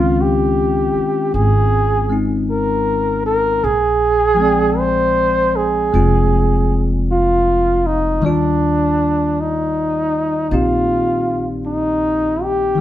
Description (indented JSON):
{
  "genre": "jazz ballad",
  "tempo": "52 BPM",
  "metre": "4/4",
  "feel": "swing 66% on 8ths",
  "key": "Eb major",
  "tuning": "A4 = 440 Hz",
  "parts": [
    { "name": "breathy flugelhorn", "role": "melody", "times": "0.0-12.8 s", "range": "D4 to C5", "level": "-16 LUFS", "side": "right 1 dB", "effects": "none" },
    { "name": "bell-like tine electric piano", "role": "accompaniment", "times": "0.0-12.8 s", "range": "Eb3 to G5", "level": "-20 LUFS", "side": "left 2 dB", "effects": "none" },
    { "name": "upright bass", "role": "bass", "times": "0.0-12.8 s", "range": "F1 to Eb2", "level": "-21 LUFS", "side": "equal", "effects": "none" }
  ],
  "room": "moderate stone room reverb, RT60 1.0 s",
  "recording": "band playing live in one room",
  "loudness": "-14 LUFS",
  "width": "side -12 dB against mid",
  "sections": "0.0-12.8 A section",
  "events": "none",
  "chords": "0.0 Dbmaj9; 3.6 Bb13; 8.2 Ebmaj9"
}